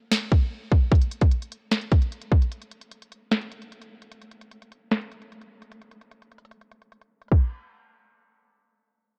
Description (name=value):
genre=hip hop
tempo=150 BPM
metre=4/4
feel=half-time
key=none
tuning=none
part: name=trap drum kit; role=drums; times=0.1-7.4 s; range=crash cymbal, hi-hat, kick drum, snare drum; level=-22 LUFS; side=equal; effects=none
room=digital ambience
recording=low-pass filter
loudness=-24 LUFS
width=mono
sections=0.0-7.3 A section; 7.3-9.2 B section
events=break 0.0-0.9, 5.7-7.3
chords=none